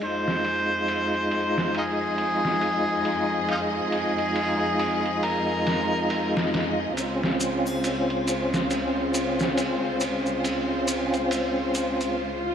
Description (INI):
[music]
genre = trip hop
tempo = 69 BPM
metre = 4/4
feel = swing 60% on 16ths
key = F minor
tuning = A4 = 440 Hz
[part]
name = mellow harmonica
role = melody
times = 0.0-6.5 s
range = Eb4 to C5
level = -27 LUFS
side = equal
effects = tape echo
[part]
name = percussive tonewheel organ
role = accompaniment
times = 0.0-12.2 s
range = Ab3 to F4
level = -26 LUFS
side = equal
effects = overdrive, chorus vibrato, slow rotary speaker, tremolo, tape echo
[part]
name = dark studio string section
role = sustained chords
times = 0.0-12.5 s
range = Db2 to Eb5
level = -30 LUFS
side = left 1 dB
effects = none
[part]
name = trip hop sampler-style drum kit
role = drums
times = 0.0-12.2 s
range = ride cymbal, snare drum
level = -31 LUFS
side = right 1 dB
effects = low-pass filter on cymbals, low-pass filter on kick, low-pass filter on snare, low-pass filter on room
[part]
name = maracas and triangle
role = percussion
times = 7.0-12.1 s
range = none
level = -36 LUFS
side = left 1 dB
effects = none
[part]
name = swell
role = sound effects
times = 12.3-12.5 s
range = none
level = -29 LUFS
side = left 1 dB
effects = none
[sound]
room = moderate echo chamber reverb, RT60 2.2 s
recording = none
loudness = -22 LUFS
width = side -8 dB against mid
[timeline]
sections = 0.0-12.5 A section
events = break 12.2-12.5; swell 12.3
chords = 0.0 Fm7; 7.0 Dbmaj7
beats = | 0.01 0.88 1.75 2.62 | 3.49 4.36 5.23 6.10 | 6.97 7.84 8.71 9.58 | 10.45 11.32 12.19